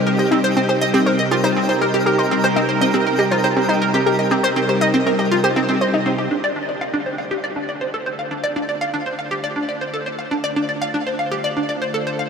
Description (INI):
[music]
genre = ambient, sequencer-driven space music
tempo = 120 BPM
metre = 4/4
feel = straight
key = C minor, D minor from 6.3 s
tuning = A4 = 440 Hz
[part]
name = sweeping resonant pad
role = sustained chords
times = 0.0-12.3 s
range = C3 to C5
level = -22 LUFS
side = equal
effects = chorus, shimmer reverb
[part]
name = warbly dusty pluck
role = arpeggios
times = 0.0-6.2 s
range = C4 to Eb5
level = -22 LUFS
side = left 1 dB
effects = chorus, auto-pan, shimmer reverb, tape echo
[part]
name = twinkling granular texture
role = texture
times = 0.0-6.3 s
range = Eb4 to G4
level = -28 LUFS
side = right 1 dB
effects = built-in reverb, shimmer reverb
[part]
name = hollow square pluck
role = riff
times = 0.1-12.3 s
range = C4 to F5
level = -20 LUFS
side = right 1 dB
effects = lush chorus, shimmer reverb, tape echo
[sound]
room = wet huge ambient reverb, RT60 7.7 s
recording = none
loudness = -17 LUFS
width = side -6 dB against mid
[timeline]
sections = 0.0-6.3 A section; 6.3-12.3 B section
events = fade-in on analog synth pad 6.3-12.3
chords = 0.0 Cm; 6.3 Dm7